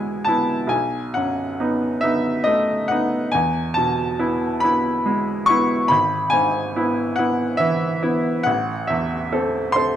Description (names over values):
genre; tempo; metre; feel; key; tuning
classical, romantic nocturne for solo piano; 47 BPM (dotted quarters); 6/8; rubato; E major; A4 = 438 Hz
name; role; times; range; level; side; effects
bright baby grand piano; solo; 0.0-10.0 s; G#1 to C#6; -18 LUFS; equal; none
room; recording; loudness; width
moderate recital hall reverb, RT60 1.8 s; close, detailed microphones; -18 LUFS; side -10 dB against mid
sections
0.0-10.0 A section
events
none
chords
0.0 E; 0.7 B7; 3.3 E; 5.9 E/G#; 8.5 Am